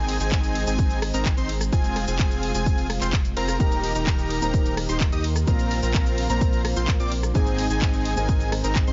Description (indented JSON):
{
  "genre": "EDM, festival progressive house",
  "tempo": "128 BPM",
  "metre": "4/4",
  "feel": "straight",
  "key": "unclear",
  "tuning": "A4 = 442 Hz",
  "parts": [
    { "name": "lush unison pad", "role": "sustained chords", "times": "0.0-8.9 s", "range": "Eb3 to Bb4", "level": "-36 LUFS", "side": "equal", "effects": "chorus, sidechain pumping" },
    { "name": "unison lead", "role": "arpeggios", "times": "0.0-8.9 s", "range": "Ab5 to Eb6", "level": "-34 LUFS", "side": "equal", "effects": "subtle chorus, sidechain pumping, delay" },
    { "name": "dense compressed supersaw", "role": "riff", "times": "0.0-8.9 s", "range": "C4 to Eb5", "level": "-32 LUFS", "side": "equal", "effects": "sidechain pumping, delay" },
    { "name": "saturated sub bass", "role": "bass", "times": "0.0-8.9 s", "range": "Eb1 to Eb2", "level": "-30 LUFS", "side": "equal", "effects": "sidechain pumping" },
    { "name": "house drum kit", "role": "drums", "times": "0.1-8.9 s", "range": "handclaps, hi-hat, ride cymbal, rim click, shaker", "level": "-34 LUFS", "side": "equal", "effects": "overdrive" },
    { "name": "electronic kick drum", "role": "drums", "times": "0.3-8.9 s", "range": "none", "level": "-24 LUFS", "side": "equal", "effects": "overdrive" },
    { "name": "dark concert grand piano", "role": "accompaniment", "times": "3.6-8.9 s", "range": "Ab2 to C5", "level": "-33 LUFS", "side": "equal", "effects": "sidechain pumping, delay" }
  ],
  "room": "digital ambience",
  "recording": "nothing above 7.5 kHz",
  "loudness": "-23 LUFS",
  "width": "mono",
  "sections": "0.0-8.9 A section",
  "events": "none",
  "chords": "0.0 Ab; 1.7 Fm; 3.6 Eb; 5.5 Bbsus2; 7.4 Ab"
}